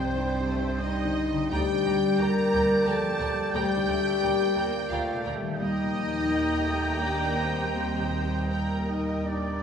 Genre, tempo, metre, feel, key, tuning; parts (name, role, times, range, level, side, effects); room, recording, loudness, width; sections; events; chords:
cinematic; 87 BPM; 3/4; uneven beats, rubato; A4 = 440 Hz
warm symphonic violin section; melody; 0.0-9.6 s; Bb4 to Bb5; -35 LUFS; equal
bright clarinet; second line; 0.0-9.6 s; D5 to Eb5; -37 LUFS; right 1 dB
clear oboe; second line; 0.0-9.6 s; D5 to G5; -36 LUFS; right 3 dB
warm symphonic violin section; second line; 0.0-9.6 s; D5 to Bb5; -37 LUFS; equal
dark baby grand piano; accompaniment; 0.0-9.6 s; C2 to G4; -35 LUFS; equal
warm symphonic viola section; accompaniment; 0.0-9.6 s; Eb4 to G5; -39 LUFS; right 1 dB
mellow French horn section; sustained chords; 0.0-9.6 s; Bb3 to Bb4; -28 LUFS; left 3 dB
concert harp; arpeggios; 0.0-9.4 s; C3 to G4; -40 LUFS; left 4 dB
rich symphonic cello section; bass; 0.0-9.6 s; F3 to Bb3; -32 LUFS; right 1 dB
rich symphonic double bass section; bass; 0.0-9.6 s; C2 to Eb2; -34 LUFS; right 2 dB
mellow silver concert flute; second line; 8.9-9.6 s; D5 to Eb5; -38 LUFS; left 2 dB
wet recital hall reverb, RT60 1.5 s; recorded in a church or concert hall; -24 LUFS; side -7 dB against mid
0.0-9.6 A section
0.0 Cmadd9; 1.5 Gm/D; 5.6 Eb